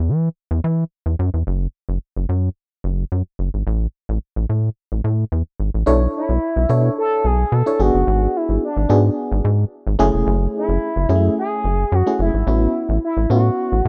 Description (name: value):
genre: early-eighties boogie funk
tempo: 109 BPM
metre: 4/4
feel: straight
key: B dorian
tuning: A4 = 439 Hz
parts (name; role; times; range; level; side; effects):
- rubbery square bass; bass; 0.0-13.9 s; E1 to E3; -20 LUFS; equal; none
- FM electric piano with tremolo; accompaniment; 5.9-13.9 s; G#3 to C#5; -23 LUFS; equal; none
- expressive synth lead; melody; 6.2-13.9 s; D4 to A4; -24 LUFS; equal; chorus, phaser
room: little or no reverb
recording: rough home demo mix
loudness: -19 LUFS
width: mono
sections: 0.0-5.9 A section; 5.9-13.9 B section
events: none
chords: 0.0 N.C.; 3.7 A5; 5.9 Bm11; 7.8 G#m7b5; 10.0 F#m9; 12.5 A6